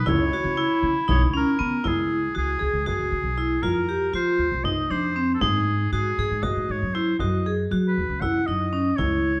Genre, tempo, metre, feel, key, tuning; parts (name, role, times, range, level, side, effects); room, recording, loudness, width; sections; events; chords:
contemporary instrumental, chamber music in an uneven meter; 235 BPM (eighths); 7/8; straight; A4 = 440 Hz
clear oboe; melody; 0.0-9.4 s; G#4 to F#5; -30 LUFS; equal
upright bass; bass; 0.0-9.4 s; B1 to F#3; -29 LUFS; equal
mellow clarinet; second line; 0.1-1.8 s; C#4 to E4; -30 LUFS; equal
vibraphone with hard mallets; arpeggios; 0.1-9.3 s; B3 to G#4; -27 LUFS; equal
frame drum; percussion; 0.1-9.2 s; -34 LUFS; equal
moderate recital hall reverb, RT60 1.3 s; dark, warm production; -24 LUFS; mono
0.0-1.9 A section; 1.9-9.4 B section
0.1 C#m7; 1.9 C#m; 3.6 F5; 5.4 G#5; 7.2 C#m